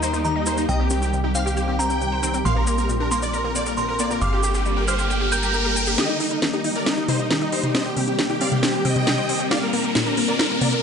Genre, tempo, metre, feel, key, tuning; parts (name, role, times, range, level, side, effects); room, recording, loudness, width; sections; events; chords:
uplifting trance; 136 BPM; 4/4; straight; Eb major; A4 = 440 Hz
supersaw chords; melody; 0.0-10.8 s; Eb4 to G5; -26 LUFS; equal; ensemble chorus, low-pass filter, ping-pong delay
glassy synth bell; second line; 0.0-5.9 s; F5 to G6; -27 LUFS; right 2 dB; chorus, ping-pong delay
shimmering ambient pad; sustained chords; 0.0-10.8 s; D3 to G4; -27 LUFS; equal; chorus, built-in reverb
wide unison pluck; arpeggios; 0.0-10.8 s; Bb2 to G5; -28 LUFS; left 3 dB; ping-pong delay
plucky analog bass; bass; 0.0-6.0 s; G1 to Eb2; -25 LUFS; equal
cabasa; percussion; 0.0-6.0 s; -30 LUFS; left 2 dB
riser; sound effects; 4.1-10.8 s; -29 LUFS; right 1 dB
techno drum kit; drums; 6.0-10.8 s; hi-hat, snare drum, toms; -23 LUFS; equal; overdrive
light reverb, digital ambience; nothing above 11.0 kHz; -19 LUFS; side -6 dB against mid
0.0-6.0 A section; 6.0-10.8 B section
filter sweep on synth pluck 0.0-6.0; riser 4.1-6.0, 6.0-10.8; build-up 6.0-10.8; drum fill 6.0-10.8
0.0 Eb; 0.7 Cm; 2.5 Bbadd9; 4.2 Gm; 6.0 Eb; 7.7 Cm; 9.5 Bbadd9